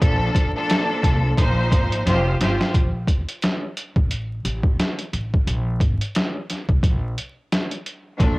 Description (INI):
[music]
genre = hip hop, boom-bap hip-hop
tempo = 88 BPM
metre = 4/4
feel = swing 57% on 16ths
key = Bb major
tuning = A4 = 440 Hz
[part]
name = rich studio string section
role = accompaniment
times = 0.0-2.7, 8.2-8.4 s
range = Bb2 to C5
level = -22 LUFS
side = equal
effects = cassette tape, high-pass filter, low-pass filter
[part]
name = upright bass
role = bass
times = 0.0-8.4 s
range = F1 to C2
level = -23 LUFS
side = equal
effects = none
[part]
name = trip hop sampler-style drum kit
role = drums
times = 0.0-8.4 s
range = hi-hat, kick drum, snare drum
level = -20 LUFS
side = equal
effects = overdrive, cassette tape
[sound]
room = studio reverb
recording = home recording on cassette, vinyl crackle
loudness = -19 LUFS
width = side -22 dB against mid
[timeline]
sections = 0.0-2.7 A section; 2.7-8.4 B section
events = drum fill 2.1-2.7; break 2.7-8.2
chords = 0.0 Bbmaj7; 1.4 Ab6/Bb; 2.1 Fsus2; 2.7 N.C.